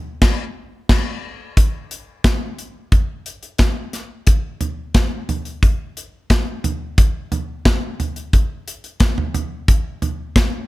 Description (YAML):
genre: pop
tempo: 89 BPM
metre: 4/4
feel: straight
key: none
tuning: none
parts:
  - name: modern studio drum kit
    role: drums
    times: 0.2-10.5 s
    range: crash cymbal, hi-hat, kick drum, snare drum, toms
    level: -16 LUFS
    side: equal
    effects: none
room: light reverb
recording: none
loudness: -17 LUFS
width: side -18 dB against mid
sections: 0.0-1.6 A section; 1.6-10.7 B section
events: band accent 0.2-1.6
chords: none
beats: 0.22 0.89 | 1.57 2.25 2.92 3.60 | 4.28 4.95 5.63 6.30 | 6.98 7.66 8.34 9.01 | 9.69 10.36